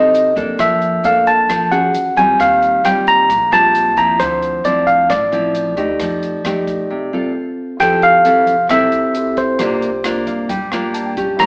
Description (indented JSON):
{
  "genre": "bossa nova",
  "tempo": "133 BPM",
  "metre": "4/4",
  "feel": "straight",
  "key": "F major from 7.8 s",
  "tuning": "A4 = 440 Hz",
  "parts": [
    { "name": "tine electric piano", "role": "melody", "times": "0.0-11.5 s", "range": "C5 to Bb5", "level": "-16 LUFS", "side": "equal", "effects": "none" },
    { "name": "nylon-string guitar", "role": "accompaniment", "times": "0.0-11.5 s", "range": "A2 to A4", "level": "-22 LUFS", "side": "equal", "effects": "none" },
    { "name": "upright bass", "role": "bass", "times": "0.0-11.5 s", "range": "A1 to G2", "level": "-34 LUFS", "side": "equal", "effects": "none" },
    { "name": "compact cocktail drum kit", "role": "drums", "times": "0.1-11.5 s", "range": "hi-hat, kick drum, rim click", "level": "-30 LUFS", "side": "equal", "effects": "none" },
    { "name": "egg shaker", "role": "percussion", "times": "0.1-11.5 s", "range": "none", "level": "-52 LUFS", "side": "equal", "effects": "none" },
    { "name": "warm concert grand piano", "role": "accompaniment", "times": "7.8-11.5 s", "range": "E4 to A5", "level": "-25 LUFS", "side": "equal", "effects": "none" }
  ],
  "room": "wet stone room reverb, RT60 1.1 s",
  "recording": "band playing live in one room, AM radio sound",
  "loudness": "-15 LUFS",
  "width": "mono",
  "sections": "0.0-7.8 A section; 7.8-11.5 B section",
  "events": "break 6.9-7.8; grand piano fill 10.0-11.4",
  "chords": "0.0 F7; 0.6 Bbmaj7/F; 1.9 E69; 2.4 Eb69; 4.2 Dm9; 6.0 F9; 7.4 F/C; 7.8 Fmaj7; 9.6 C9sus4",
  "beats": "0.14 | 0.59 1.05 1.50 1.95 | 2.40 2.85 3.30 3.75 | 4.20 4.65 5.10 5.55 | 6.00 6.45 6.90 7.35 | 7.80 8.25 8.70 9.15 | 9.60 10.05 10.50 10.95 | 11.40"
}